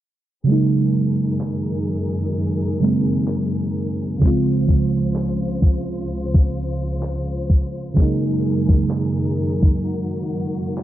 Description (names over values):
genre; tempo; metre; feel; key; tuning
contemporary R&B; 64 BPM; 4/4; swing 54% on 16ths; unclear; A4 = 440 Hz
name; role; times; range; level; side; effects
muted felt-like synth keys; accompaniment; 0.4-10.8 s; Db3 to F4; -20 LUFS; right 2 dB; chorus, phaser
warm studio string section; sustained chords; 0.5-10.8 s; Db2 to C5; -26 LUFS; left 1 dB; sidechain pumping
gated 80s digital drum machine; drums; 1.4-10.8 s; handclaps, kick drum; -16 LUFS; equal; gated reverb, overdrive
room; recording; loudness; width
little or no reverb; low-pass filter; -18 LUFS; side -13 dB against mid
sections
0.5-10.8 A section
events
filter sweep 0.5-10.8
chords
0.5 Gb69; 4.2 Dbmaj7; 8.0 Gb69